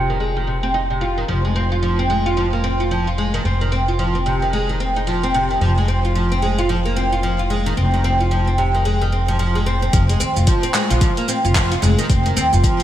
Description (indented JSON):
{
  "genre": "organic downtempo",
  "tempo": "111 BPM",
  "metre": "4/4",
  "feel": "swing 60% on 16ths",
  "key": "F minor",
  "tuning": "A4 = 440 Hz",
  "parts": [
    { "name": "oud", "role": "arpeggios", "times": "0.0-12.8 s", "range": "C3 to F4", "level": "-19 LUFS", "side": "right 1 dB", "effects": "low-pass filter, digital delay" },
    { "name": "upright bass", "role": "bass", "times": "0.0-12.6 s", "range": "F1 to Eb2", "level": "-20 LUFS", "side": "equal", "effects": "sidechain pumping" },
    { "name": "deep house drum kit", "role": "drums", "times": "9.9-12.8 s", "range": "handclaps, hi-hat, shaker", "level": "-24 LUFS", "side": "equal", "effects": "gated reverb" },
    { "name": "electronic kick drum", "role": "drums", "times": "9.9-12.8 s", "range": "none", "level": "-17 LUFS", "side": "equal", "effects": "none" }
  ],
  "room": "moderate lush hall reverb, RT60 2.0 s",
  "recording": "bright 1980s-style digital production",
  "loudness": "-16 LUFS",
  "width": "side -12 dB against mid",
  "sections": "0.0-9.9 A section; 9.9-12.8 B section",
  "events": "none",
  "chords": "0.0 Fm7",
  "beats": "0.21 0.75 | 1.29 1.83 2.37 2.91 | 3.45 3.99 4.53 5.07 | 5.61 6.15 6.69 7.23 | 7.77 8.31 8.85 9.39 | 9.94 10.48 11.02 11.56 | 12.10 12.64"
}